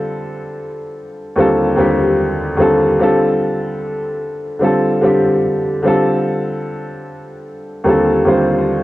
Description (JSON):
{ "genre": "hip hop", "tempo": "74 BPM", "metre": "4/4", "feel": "swing 57% on 16ths", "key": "F major", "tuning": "A4 = 439 Hz", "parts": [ { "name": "felt-muted upright piano", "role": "solo", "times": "0.0-8.8 s", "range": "Eb2 to C5", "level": "-14 LUFS", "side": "equal", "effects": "cassette tape, low-pass filter, tape echo" } ], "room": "moderate spring reverb, RT60 1.5 s, small room ambience", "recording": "cassette tape", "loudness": "-13 LUFS", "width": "side -16 dB against mid", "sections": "0.0-8.8 A section", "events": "none", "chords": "0.0 F69/D; 1.4 Eb69; 3.0 F69/D; 7.9 Eb69" }